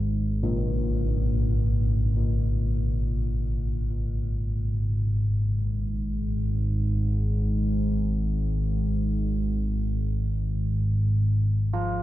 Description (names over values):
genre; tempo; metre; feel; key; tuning
dark ambient drone; free time; none; none; unclear; A4 = 441 Hz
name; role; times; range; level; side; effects
analog drone; drone; 0.0-12.0 s; G#1 to G#2; -24 LUFS; equal; chorus
carillon bells; arpeggios; 0.4-12.0 s; A#2 to F4; -33 LUFS; left 1 dB; ping-pong delay
room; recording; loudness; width
wet cathedral reverb, RT60 7.5 s; dark, warm production; -23 LUFS; side -15 dB against mid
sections
0.0-12.0 A section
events
filter sweep on synth drone 0.0-12.0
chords
0.0 G#sus2; 7.1 Fm